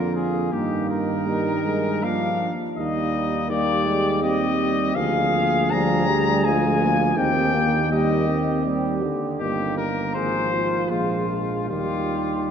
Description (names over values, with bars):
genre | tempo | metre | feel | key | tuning
classical, brass quintet | 81 BPM | 3/4 | rubato | Eb major | A4 = 440 Hz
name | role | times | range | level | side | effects
clear trumpet | melody | 0.0-12.5 s | F4 to Bb5 | -25 LUFS | left 5 dB | none
warm trumpet | second line | 0.0-12.5 s | D4 to Ab4 | -29 LUFS | right 5 dB | none
clear trombone | accompaniment | 0.0-12.5 s | D3 to Bb3 | -28 LUFS | right 2 dB | none
mellow French horn | accompaniment | 0.0-12.5 s | F3 to C4 | -27 LUFS | left 2 dB | none
mellow tuba | bass | 0.0-12.5 s | G1 to G2 | -26 LUFS | right 3 dB | none
room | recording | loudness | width
wet church reverb, RT60 3.2 s | dark, warm production | -20 LUFS | side -7 dB against mid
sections
0.0-12.5 A section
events
none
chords
0.0 Bb7/F; 0.5 Eb/G; 2.8 Eb; 5.0 Bb7/D; 7.2 Eb; 9.4 Eb/G; 10.2 Ab; 10.9 Bb5; 11.7 Eb